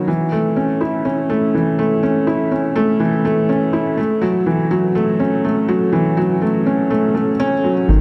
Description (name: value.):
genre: piano and strings electronica.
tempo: 123 BPM.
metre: 4/4.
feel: straight.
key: unclear.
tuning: A4 = 435 Hz.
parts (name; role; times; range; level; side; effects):
felt-muted upright piano; riff; 0.0-8.0 s; D#3 to E4; -17 LUFS; equal; delay.
warm sub bass; bass; 7.9-8.0 s; G#1; -14 LUFS; equal; none.
room: wet huge ambient reverb, RT60 4.7 s.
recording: none.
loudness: -17 LUFS.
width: mono.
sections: 0.0-7.9 A section.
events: build-up 0.0-7.9.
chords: 0.1 A; 4.0 F#m7.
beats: | 0.08 0.57 1.05 1.54 | 2.03 2.52 3.01 3.49 | 3.98 4.47 4.96 5.45 | 5.93 6.42 6.91 7.40 | 7.88.